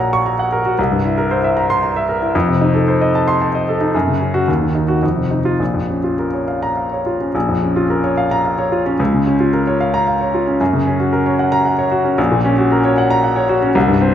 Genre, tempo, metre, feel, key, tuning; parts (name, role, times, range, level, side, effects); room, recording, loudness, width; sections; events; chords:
classical, virtuoso piano study; 102-117 BPM; 3/4; rubato; Bb minor; A4 = 441 Hz
clear grand piano; solo; 0.0-14.1 s; Bb1 to Db6; -14 LUFS; equal
moderate recital hall reverb, RT60 1.6 s; -14 LUFS; side -10 dB against mid
0.0-7.3 A section; 7.3-14.1 A section
0.0 Gb/Bb; 0.8 C7; 2.3 F7; 3.9 Gb5; 4.5 Ebm; 5.0 F5; 5.6 Bbm; 9.0 Bbm/Db; 10.6 Gb; 12.2 Gb/Bb